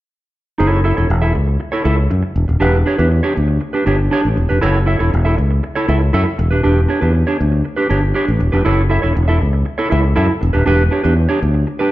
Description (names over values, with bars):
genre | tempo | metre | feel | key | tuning
disco | 119 BPM | 4/4 | straight | E dorian | A4 = 440 Hz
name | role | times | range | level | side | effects
clean electric guitar | accompaniment | 0.6-11.9 s | D4 to E5 | -17 LUFS | right 2 dB | spring reverb
fingered electric bass | bass | 0.6-11.6 s | D#1 to F#2 | -15 LUFS | equal | none
room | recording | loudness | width
moderate large studio reverb, RT60 1.4 s | band playing live in one room | -13 LUFS | side -16 dB against mid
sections
0.6-11.9 A section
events
none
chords
0.6 F#m7; 2.4 Em7; 4.6 F#m7; 6.4 Em7; 8.7 F#m7; 10.4 Em7